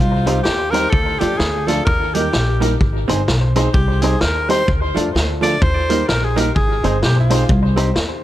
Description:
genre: ska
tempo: 128 BPM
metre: 4/4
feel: swing 61% on 8ths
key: C minor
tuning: A4 = 440 Hz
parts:
  - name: clear tenor saxophone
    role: melody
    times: 0.0-7.6 s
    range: F4 to D5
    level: -21 LUFS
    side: equal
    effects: tape echo
  - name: upright bass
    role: bass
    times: 0.0-8.2 s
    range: G1 to F2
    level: -19 LUFS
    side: equal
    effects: none
  - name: vintage hollow-body jazz guitar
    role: accompaniment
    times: 0.3-7.9 s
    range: F3 to Ab4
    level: -22 LUFS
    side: right 7 dB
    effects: none
  - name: dark upright piano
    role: stabs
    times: 0.3-7.9 s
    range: D4 to C5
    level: -24 LUFS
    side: left 3 dB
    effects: tape echo
  - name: vintage drum kit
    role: drums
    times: 0.3-8.1 s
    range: hi-hat, kick drum, snare drum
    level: -20 LUFS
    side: equal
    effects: tape echo
room: light reverb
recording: none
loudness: -14 LUFS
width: side -14 dB against mid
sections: 0.0-8.2 A section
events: tenor saxophone solo 0.0-8.2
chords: 0.0 Cm; 0.9 Dm; 1.9 Eb; 2.8 Ab; 3.7 Cm; 4.7 Dm; 5.6 Eb; 6.6 Ab; 7.5 Cm

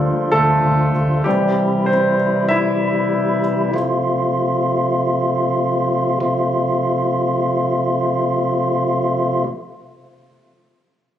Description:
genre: pop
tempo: 97 BPM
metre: 4/4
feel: straight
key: F major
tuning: A4 = 440 Hz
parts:
  - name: warm concert grand piano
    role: accompaniment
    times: 0.0-3.8 s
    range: E3 to E5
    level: -17 LUFS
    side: left 1 dB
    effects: none
  - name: tonewheel organ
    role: sustained chords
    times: 0.0-9.4 s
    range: C3 to F4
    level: -18 LUFS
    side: equal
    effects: fast rotary speaker
  - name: vintage muted fingered electric bass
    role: bass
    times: 0.0-1.2 s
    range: D2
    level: -18 LUFS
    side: equal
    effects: none
room: light reverb, digital ambience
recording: recorded on a phone in the room, club reverb, compression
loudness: -16 LUFS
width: side -10 dB against mid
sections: 0.0-6.2 A section; 6.2-8.7 B section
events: grand piano solo 0.0-6.2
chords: 0.0 Dm; 1.3 C; 3.7 F

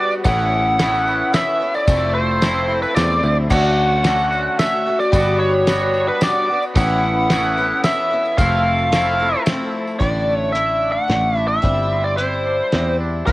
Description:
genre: folk rock and heartland rock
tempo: 111 BPM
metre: 3/4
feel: straight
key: unclear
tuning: A4 = 441 Hz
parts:
  - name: biting lead guitar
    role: melody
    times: 0.0-13.3 s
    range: B4 to F#5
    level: -18 LUFS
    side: equal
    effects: overdrive, cassette tape
  - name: picked twelve-string acoustic guitar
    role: accompaniment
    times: 0.0-13.3 s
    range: A2 to A4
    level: -24 LUFS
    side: left 2 dB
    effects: cassette tape
  - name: tonewheel organ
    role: sustained chords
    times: 0.0-10.0 s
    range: G3 to C#6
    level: -34 LUFS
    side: equal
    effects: none
  - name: twangy electric guitar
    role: riff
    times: 0.0-13.3 s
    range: A2 to F#4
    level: -25 LUFS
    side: equal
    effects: cassette tape
  - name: tambourine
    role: percussion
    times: 0.1-9.9 s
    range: none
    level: -38 LUFS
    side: right 4 dB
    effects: none
  - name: picked electric bass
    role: bass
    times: 0.2-13.3 s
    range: F1 to E2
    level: -22 LUFS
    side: equal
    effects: none
  - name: cloth-damped thuddy drum kit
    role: drums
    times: 0.3-13.3 s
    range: crash cymbal, hi-hat, kick drum, ride cymbal, snare drum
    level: -22 LUFS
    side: equal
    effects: cassette tape
room: light reverb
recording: home recording on cassette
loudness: -15 LUFS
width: side -18 dB against mid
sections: 0.0-10.0 A section; 10.0-13.3 B section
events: none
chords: 0.3 Aadd9; 1.9 Fmaj7; 3.5 Dmaj7; 5.1 Gmaj7; 6.8 Aadd9; 8.4 Fmaj7; 10.0 Asus4; 11.6 Cadd9/G

